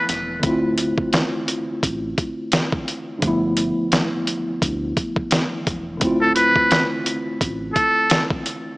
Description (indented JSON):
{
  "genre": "hip hop, boom-bap hip-hop",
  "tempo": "86 BPM",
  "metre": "4/4",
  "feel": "swing 57% on 16ths",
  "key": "D dorian",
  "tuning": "A4 = 440 Hz",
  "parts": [
    { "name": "trumpet with metal mute", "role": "melody", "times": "0.0, 6.2-8.3 s", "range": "A4 to B4", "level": "-19 LUFS", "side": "equal", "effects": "high-pass filter, low-pass filter, digital delay" },
    { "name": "tine electric piano", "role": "accompaniment", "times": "0.0-8.8 s", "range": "G2 to F4", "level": "-23 LUFS", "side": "equal", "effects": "medium stereo tremolo, high-pass filter, low-pass filter" },
    { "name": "sub bass with octave", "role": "bass", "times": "0.1-7.7 s", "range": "D1 to D2", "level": "-32 LUFS", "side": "equal", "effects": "none" },
    { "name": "dusty soul sampler-style drum kit", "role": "drums", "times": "0.1-8.6 s", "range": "hi-hat, kick drum, snare drum", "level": "-21 LUFS", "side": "equal", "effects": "overdrive" }
  ],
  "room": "moderate echo chamber reverb, RT60 2.3 s",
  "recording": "small speaker sound",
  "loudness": "-18 LUFS",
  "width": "side -23 dB against mid",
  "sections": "0.0-8.8 A section",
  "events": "none",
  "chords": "0.4 Dm7; 3.2 G13; 6.0 Dm7"
}